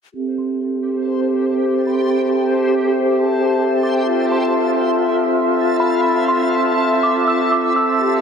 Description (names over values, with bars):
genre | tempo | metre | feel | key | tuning
hip hop | 122 BPM | 4/4 | half-time | A minor | A4 = 440 Hz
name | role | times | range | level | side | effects
breathy bright flute section | sustained chords | 0.1-8.2 s | C4 to E5 | -16 LUFS | equal | low-pass filter
backwards swelling texture | texture | 1.0-8.2 s | F4 to A5 | -23 LUFS | left 1 dB | built-in reverb
metallic FM bell | melody | 0.4-8.0 s | B5 to E6 | -22 LUFS | right 1 dB | chorus, low-pass filter, digital delay
room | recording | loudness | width
moderate huge ambient reverb, RT60 6.2 s | none | -15 LUFS | side -6 dB against mid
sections
0.1-8.2 A section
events
filter sweep 0.1-8.2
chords
0.1 Am7; 4.1 Fmaj7